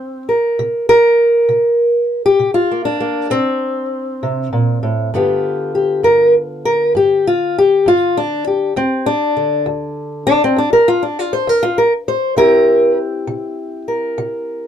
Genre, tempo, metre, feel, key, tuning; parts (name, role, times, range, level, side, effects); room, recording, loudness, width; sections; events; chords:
acoustic country blues, solo or duo; 66 BPM (dotted quarters); 12/8; straight; A4 = 440 Hz
fingerpicked old ladder-braced acoustic guitar; solo; 0.0-14.7 s; D2 to C5; -13 LUFS; equal
wet booth ambience, RT60 0.2 s; dark, warm production; -13 LUFS; side -9 dB against mid
0.0-14.7 A section
steel-string acoustic guitar solo 0.0-14.7
0.0 C7(no3); 1.5 Amadd11 (rootless); 5.1 G7; 8.8 N.C.; 12.4 C7